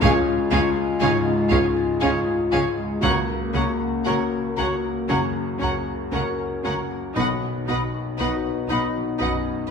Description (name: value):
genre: cinematic, emotional film score for orchestra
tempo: 59 BPM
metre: 4/4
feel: rubato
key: F# major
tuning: A4 = 439 Hz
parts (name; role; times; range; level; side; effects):
- rich studio violin section; melody; 0.0-9.3 s; E#5 to F#5; -31 LUFS; left 2 dB; none
- clear oboe; second line; 0.0-9.4 s; C#5 to D#5; -31 LUFS; right 4 dB; none
- flute section; second line; 0.0-9.3 s; G#5 to B5; -33 LUFS; left 2 dB; none
- rich studio violin section; second line; 0.0-9.7 s; G#4 to B4; -35 LUFS; left 1 dB; none
- felt-muted upright piano; accompaniment; 0.0-9.7 s; B1 to B4; -29 LUFS; equal; none
- rich studio viola section; accompaniment; 0.0-9.3 s; C#4 to D#4; -32 LUFS; right 1 dB; none
- mellow French horn section; sustained chords; 0.0-9.7 s; G#3 to F#4; -25 LUFS; left 3 dB; none
- concert harp; arpeggios; 0.0-9.7 s; B2 to D#5; -31 LUFS; left 7 dB; none
- rich studio cello section; bass; 0.0-9.3 s; B2 to C#3; -32 LUFS; right 3 dB; none
- warm studio double bass section; bass; 0.0-9.3 s; B1 to C#2; -29 LUFS; right 3 dB; none
- dark clarinet; second line; 0.1-9.3 s; E#4 to F#4; -34 LUFS; left 1 dB; none
room: wet recital hall reverb, RT60 1.6 s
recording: minimal, uncompressed stereo recording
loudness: -20 LUFS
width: side -6 dB against mid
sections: 0.0-9.7 A section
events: none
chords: 0.0 C#; 3.0 F#/C#; 7.2 B